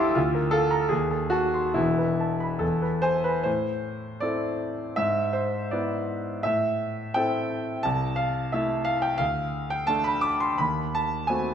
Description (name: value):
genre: classical, romantic character piece for solo piano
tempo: 68-90 BPM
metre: 2/4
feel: rubato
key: A minor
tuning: A4 = 440 Hz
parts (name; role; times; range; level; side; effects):
- clear concert grand piano; solo; 0.0-11.5 s; E1 to A6; -23 LUFS; equal; none
room: wet recital hall reverb, RT60 1.3 s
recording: none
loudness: -23 LUFS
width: side -8 dB against mid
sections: 0.0-3.5 A section; 3.5-11.5 B section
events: none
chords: 0.2 Bb/D; 0.9 D#dim7; 1.8 Esus4; 2.6 E; 3.5 Am; 5.0 E7/G#; 6.4 Am; 7.8 Am/C; 9.2 D5; 10.6 D#dim7